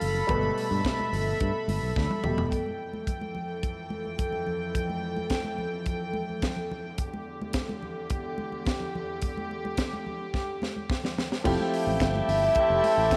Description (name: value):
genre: disco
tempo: 108 BPM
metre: 4/4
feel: straight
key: unclear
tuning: A4 = 441 Hz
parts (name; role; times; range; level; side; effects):
- warm grand piano; accompaniment; 0.0-2.5, 11.4-13.2 s; B2 to G4; -34 LUFS; equal; none
- warm studio string section; sustained chords; 0.0-13.2 s; E2 to B5; -34 LUFS; equal; none
- fingered electric bass; bass; 0.0-2.5, 11.5-13.2 s; Eb1 to G2; -32 LUFS; equal; none
- tight funk drum kit; drums; 0.0-13.2 s; crash cymbal, hi-hat, kick drum, snare drum, toms; -34 LUFS; equal; none
- congas; percussion; 0.0-13.0 s; none; -41 LUFS; equal; none
- warm studio violin section; second line; 11.5-13.2 s; E4 to E5; -27 LUFS; equal; none
- clear horn section; stabs; 12.6-13.2 s; E3 to A4; -32 LUFS; equal; none
room: wet echo chamber reverb, RT60 2.4 s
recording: none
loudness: -29 LUFS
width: mono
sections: 0.0-2.5 A section; 2.5-11.5 B section; 11.5-13.2 C section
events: drum fill 2.0-2.5, 10.3-11.5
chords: 0.0 G9; 2.5 Fmaj9; 7.0 Em7; 11.5 Fmaj9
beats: | 0.29 0.84 1.40 1.96 | 2.52 3.07 3.63 4.19 | 4.75 5.31 5.87 6.43 | 6.99 7.55 8.11 8.67 | 9.23 9.79 10.34 10.90 | 11.45 12.01 12.56 13.12